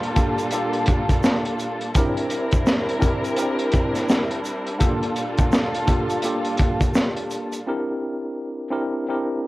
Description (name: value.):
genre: hip hop, boom-bap hip-hop.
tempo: 84 BPM.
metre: 4/4.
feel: swing 62% on 16ths.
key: unclear.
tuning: A4 = 443 Hz.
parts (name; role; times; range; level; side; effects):
tine electric piano; accompaniment; 0.0-9.5 s; Bb3 to Bb4; -25 LUFS; equal; medium stereo tremolo, high-pass filter, low-pass filter, cassette tape.
dark studio string section; sustained chords; 0.0-7.6 s; Bb2 to Bb4; -26 LUFS; equal; high-pass filter, low-pass filter, cassette tape.
crunchy breakbeat drum kit; drums; 0.0-7.7 s; hi-hat, kick drum, snare drum; -21 LUFS; equal; cassette tape.
egg shaker; percussion; 0.2-7.7 s; none; -41 LUFS; right 3 dB; none.
room: light reverb.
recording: home recording on cassette.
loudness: -20 LUFS.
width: side -19 dB against mid.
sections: 0.0-7.7 A section; 7.7-9.5 B section.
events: none.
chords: 0.0 Gm9/Bb; 1.9 C9; 4.8 Gm9/Bb; 7.7 C9.